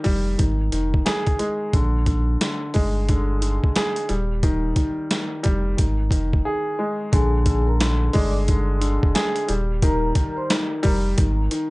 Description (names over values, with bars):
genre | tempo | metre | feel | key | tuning
hip hop, boom-bap hip-hop | 89 BPM | 4/4 | swing 63% on 16ths | unclear | A4 = 441 Hz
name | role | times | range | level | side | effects
warm upright piano | accompaniment | 0.0-11.7 s | D3 to Ab4 | -24 LUFS | equal | cassette tape, high-pass filter, low-pass filter
boom bap sampler-style drum kit | drums | 0.0-11.7 s | hi-hat, kick drum, snare drum | -21 LUFS | equal | none
warm sub bass | bass | 0.1-11.5 s | Eb1 to Bb1 | -22 LUFS | equal | none
vibraphone with soft mallets | melody | 7.1-11.0 s | Ab4 to D6 | -28 LUFS | left 2 dB | high-pass filter, low-pass filter, analog delay
room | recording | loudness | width
little or no reverb | dry, gritty hardware recording, nothing above 10.3 kHz | -19 LUFS | side -23 dB against mid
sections
0.0-7.1 A section; 7.1-11.7 B section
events
break 6.5-7.1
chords
0.4 Ab5; 1.7 Bb6; 4.1 Ebadd9; 5.8 Ab5; 7.1 Bb6; 9.5 Ebadd9; 11.2 Ab5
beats
0.39 1.06 | 1.74 2.41 3.08 3.76 | 4.43 5.11 5.78 6.46 | 7.13 7.80 8.48 9.15 | 9.83 10.50 11.17